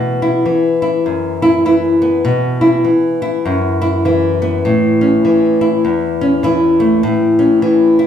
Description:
folk; 100 BPM; 4/4; swing 60% on 8ths; A4 = 445 Hz
nylon-string guitar; solo; 0.0-8.1 s; E2 to E4; -11 LUFS; left 1 dB
wet large studio reverb, RT60 1.2 s; band playing live in one room; -11 LUFS; side -9 dB against mid
0.0-8.1 A section
0.0 Bsus4; 4.6 A

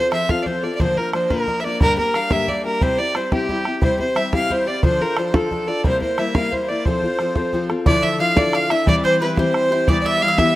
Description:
celtic folk, Celtic jig; 119 BPM (dotted quarters); 6/8; straight; F major; A4 = 438 Hz
rich fiddle; melody; 0.0-10.6 s; G4 to F5; -20 LUFS; right 1 dB
accordion; second line; 0.0-10.6 s; G4 to F5; -29 LUFS; left 1 dB
picked steel-string acoustic guitar; accompaniment; 0.0-10.6 s; G2 to Bb4; -22 LUFS; left 3 dB
bodhran; percussion; 0.1-10.5 s; -20 LUFS; right 1 dB
mandolin; second line; 7.9-10.5 s; B4 to F5; -26 LUFS; right 4 dB
light reverb, small room ambience; rough home demo mix; -17 LUFS; side -16 dB against mid
0.0-7.9 A section; 7.9-10.6 B section
0.0 F; 0.8 Bb; 1.8 Gm; 2.8 C; 4.8 Dm; 5.8 C7; 6.9 F; 7.9 Dmadd9; 8.9 C/E; 9.9 Em

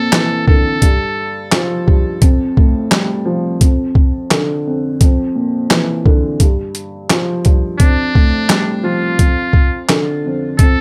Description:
hip hop, boom-bap hip-hop; 86 BPM; 4/4; swing 58% on 16ths; A4 = 440 Hz
trumpet with metal mute; melody; 0.0-1.5, 7.8-10.8 s; D4 to A4; -22 LUFS; equal; high-pass filter, low-pass filter, tape echo
dark upright piano; accompaniment; 0.0-10.8 s; F2 to G3; -20 LUFS; equal; high-pass filter, low-pass filter
boom bap sampler-style drum kit; drums; 0.1-10.8 s; handclaps, hi-hat, kick drum, snare drum; -14 LUFS; equal
light reverb; -14 LUFS; mono
0.0-10.8 A section
0.0 Bbmaj7#11/F; 0.8 Fadd9; 2.2 Gsus2/F; 3.6 Dm/F; 5.0 Bb/F; 6.4 Fsus2; 7.8 Gsus2/F; 9.2 Dm/F

